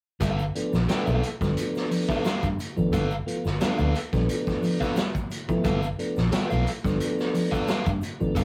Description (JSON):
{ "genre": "funk", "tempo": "88 BPM", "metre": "4/4", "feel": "straight", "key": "G mixolydian", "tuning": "A4 = 440 Hz", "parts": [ { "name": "overdriven semi-hollow guitar", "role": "accompaniment", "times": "0.2-8.4 s", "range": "A4 to G5", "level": "-32 LUFS", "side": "equal", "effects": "none" }, { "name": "mellow electric guitar", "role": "riff", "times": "0.2-8.4 s", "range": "F3 to B3", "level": "-32 LUFS", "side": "equal", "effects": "none" }, { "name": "vintage muted fingered electric bass", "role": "bass", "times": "0.2-8.4 s", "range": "G1 to G2", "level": "-29 LUFS", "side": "equal", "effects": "none" }, { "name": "vintage drum kit", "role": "drums", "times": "0.2-8.4 s", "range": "hi-hat, kick drum, snare drum", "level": "-32 LUFS", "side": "equal", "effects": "none" }, { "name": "egg shaker", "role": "percussion", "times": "0.2-8.4 s", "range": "none", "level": "-57 LUFS", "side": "equal", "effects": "none" }, { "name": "mellow tonewheel organ", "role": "stabs", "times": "0.5-8.4 s", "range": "F3 to F4", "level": "-31 LUFS", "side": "equal", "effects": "slow rotary speaker, slapback echo" } ], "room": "moderate studio reverb, RT60 0.6 s", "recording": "rough rehearsal-room recording", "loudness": "-26 LUFS", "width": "mono", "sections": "0.2-8.4 A section", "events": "none", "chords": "0.2 G9" }